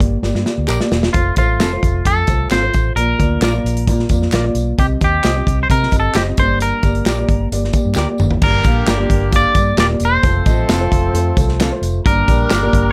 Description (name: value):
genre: uptempo 1960s-style soul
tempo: 132 BPM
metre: 4/4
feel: straight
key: unclear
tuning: A4 = 440 Hz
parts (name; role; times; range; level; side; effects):
- dark upright piano; accompaniment; 0.0-12.9 s; G2 to F5; -24 LUFS; equal; none
- vintage muted fingered electric bass; bass; 0.0-12.9 s; Eb1 to C3; -21 LUFS; equal; none
- natural country drum kit; drums; 0.0-12.8 s; crash cymbal, hi-hat, kick drum, snare drum, toms; -19 LUFS; equal; none
- tambourine and handclaps; percussion; 0.3-12.6 s; none; -32 LUFS; equal; none
- electric guitar at the edge of break-up; stabs; 0.7-12.6 s; C4 to Eb5; -24 LUFS; equal; none
- twangy electric guitar; melody; 1.1-12.9 s; F4 to D5; -21 LUFS; equal; none
- warm horn section; second line; 8.4-12.9 s; D3 to Bb4; -25 LUFS; equal; none
room: light reverb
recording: none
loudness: -15 LUFS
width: mono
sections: 0.0-8.4 A section; 8.4-12.9 B section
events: drum fill 0.2-1.1, 8.0-8.4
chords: 0.0 Gm; 1.1 F; 3.0 Bb; 4.8 Cm; 6.4 Gm; 10.2 F; 12.1 Gm